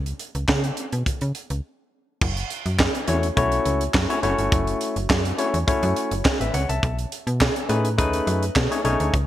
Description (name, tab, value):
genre	early-eighties boogie funk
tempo	104 BPM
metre	4/4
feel	straight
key	F# dorian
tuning	A4 = 440 Hz
part	slap-like FM bass	bass	0.0-9.3 s	F#1 to C#3	-24 LUFS	equal	none
part	tight funk drum kit	drums	0.1-9.3 s	crash cymbal, handclaps, hi-hat, kick drum, snare drum	-23 LUFS	right 1 dB	gated reverb
part	barky tine electric piano	accompaniment	3.1-9.1 s	A3 to A5	-23 LUFS	left 2 dB	overdrive
room	moderate lush hall reverb, RT60 2.2 s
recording	bright 1980s-style digital production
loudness	-20 LUFS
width	side -13 dB against mid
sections	0.0-2.2 A section; 2.2-9.3 B section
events	break 1.6-2.2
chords	0.0 N.C.; 2.2 F#m7; 6.8 B13